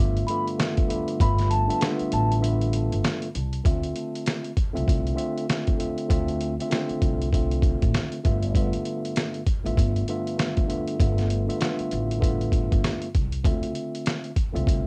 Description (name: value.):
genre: hip hop, boom-bap hip-hop.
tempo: 98 BPM.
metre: 4/4.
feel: swing 60% on 16ths.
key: D dorian.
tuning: A4 = 440 Hz.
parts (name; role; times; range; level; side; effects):
mellow tine electric piano; accompaniment; 0.0-14.9 s; G2 to E5; -30 LUFS; equal; cassette tape, high-pass filter, low-pass filter.
upright bass; bass; 0.0-14.9 s; G1 to D2; -29 LUFS; equal; none.
trip hop sampler-style drum kit; drums; 0.2-14.8 s; hi-hat, kick drum, rim click, snare drum; -27 LUFS; equal; cassette tape.
vibraphone with soft mallets; melody; 0.3-2.3 s; A5 to B5; -31 LUFS; equal; high-pass filter, low-pass filter, cassette tape, tape echo.
room: little or no reverb.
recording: home recording on cassette.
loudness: -25 LUFS.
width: mono.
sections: 0.0-3.7 A section; 3.7-14.9 B section.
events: break 2.4-3.7.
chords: 0.0 G13; 3.7 Dm9; 8.2 G13; 13.4 Dm9.